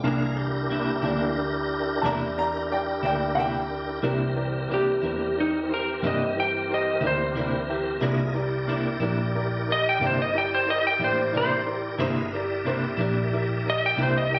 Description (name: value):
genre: slow blues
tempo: 60 BPM (dotted quarters)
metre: 12/8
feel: straight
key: C mixolydian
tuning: A4 = 439 Hz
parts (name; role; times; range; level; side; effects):
- clear upright piano; accompaniment; 0.0-14.4 s; E3 to Bb5; -32 LUFS; equal; none
- semi-hollow electric guitar; accompaniment; 0.0-14.2 s; C3 to E4; -32 LUFS; equal; tremolo
- tonewheel organ; sustained chords; 0.0-14.4 s; E3 to F5; -32 LUFS; equal; slow rotary speaker, overdrive, chorus vibrato
- vintage muted fingered electric bass; bass; 0.0-14.4 s; G1 to G2; -33 LUFS; equal; none
- clean lap steel guitar; melody; 4.7-14.4 s; Eb4 to G5; -27 LUFS; equal; none
room: light reverb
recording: recorded on a phone in the room, studio reverb, compression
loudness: -25 LUFS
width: mono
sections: 0.0-4.0 A section; 4.0-14.4 A section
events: upright piano solo 0.0-4.0; electric slide guitar solo 4.0-14.4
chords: 0.0 C9